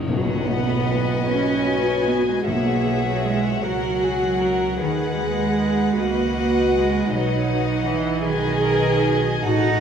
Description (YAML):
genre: classical, slow romantic movement for symphony orchestra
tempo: 52 BPM (dotted quarters)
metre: 6/8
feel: rubato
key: B major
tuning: A4 = 440 Hz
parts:
  - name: warm chamber viola section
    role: accompaniment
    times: 0.0-9.8 s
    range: D#4 to G#4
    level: -24 LUFS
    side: right 2 dB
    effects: none
  - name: concert harp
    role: arpeggios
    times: 0.0-9.8 s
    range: F#2 to C#5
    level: -28 LUFS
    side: left 8 dB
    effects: none
  - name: warm chamber violin section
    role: melody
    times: 0.1-9.8 s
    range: D#5 to G#5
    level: -30 LUFS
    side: left 6 dB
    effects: none
  - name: warm chamber violin section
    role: second line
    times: 0.1-9.8 s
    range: G#4 to F#5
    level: -28 LUFS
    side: left 4 dB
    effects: none
  - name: dark chamber double bass section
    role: bass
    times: 0.1-9.8 s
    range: A1 to D#2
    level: -28 LUFS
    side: right 4 dB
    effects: none
  - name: warm symphonic cello section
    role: bass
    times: 0.1-9.8 s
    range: D#3 to D#4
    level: -24 LUFS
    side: right 4 dB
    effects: none
  - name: tam-tam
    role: percussion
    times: 0.1-3.2 s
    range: none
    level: -32 LUFS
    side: left 2 dB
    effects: none
  - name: timpani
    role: percussion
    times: 0.1-3.6 s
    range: B2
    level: -30 LUFS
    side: equal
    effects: none
room: wet scoring stage reverb, RT60 1.8 s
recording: minimal, uncompressed stereo recording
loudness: -18 LUFS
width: side -7 dB against mid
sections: 0.1-9.8 A section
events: band accent 0.1-0.9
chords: 0.1 B; 2.5 F#7/B; 4.8 B/D#; 7.1 B